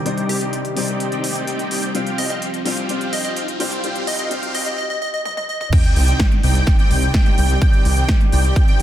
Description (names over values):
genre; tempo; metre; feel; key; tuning
EDM, festival progressive house; 127 BPM; 4/4; straight; C minor; A4 = 440 Hz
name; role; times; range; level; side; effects
dark concert grand piano; accompaniment; 0.0-5.8 s; C3 to D5; -26 LUFS; left 4 dB; sidechain pumping
lush unison pad; sustained chords; 0.0-8.8 s; C3 to D5; -29 LUFS; equal; chorus, phaser, sidechain pumping
dense compressed supersaw; riff; 0.0-8.8 s; C4 to G5; -26 LUFS; right 1 dB; sidechain pumping, low-pass filter, ping-pong delay
riser and sub drop; sound effects; 1.2-7.6 s; none; -29 LUFS; equal; none
big-room dance drum kit; drums; 0.1-8.8 s; crash cymbal, hi-hat, snare drum, toms; -26 LUFS; equal; none
plucky unison lead; melody; 0.3-5.7 s; G4 to Eb5; -26 LUFS; equal; ping-pong delay
wide detuned saw bass; bass; 0.3-8.8 s; C2; -20 LUFS; equal; chorus, sidechain pumping, high-pass filter
wide unison lead; arpeggios; 5.7-8.8 s; G5; -25 LUFS; right 1 dB; ensemble chorus, sidechain pumping, ping-pong delay
electronic kick drum; drums; 5.7-8.7 s; none; -15 LUFS; equal; none
room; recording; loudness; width
light reverb, digital ambience; dense, heavily limited modern master, high-pass filter; -16 LUFS; side -12 dB against mid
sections
0.0-5.7 A section; 5.7-8.8 B section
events
build-up 0.0-5.7; filter sweep on supersaw synth 0.0-5.7; riser 1.2-4.8; drum fill 5.3-5.7; drop 5.7-8.8; impact 5.7-7.6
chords
0.0 Cmadd9; 1.9 Fsus2/C; 5.7 Cmadd9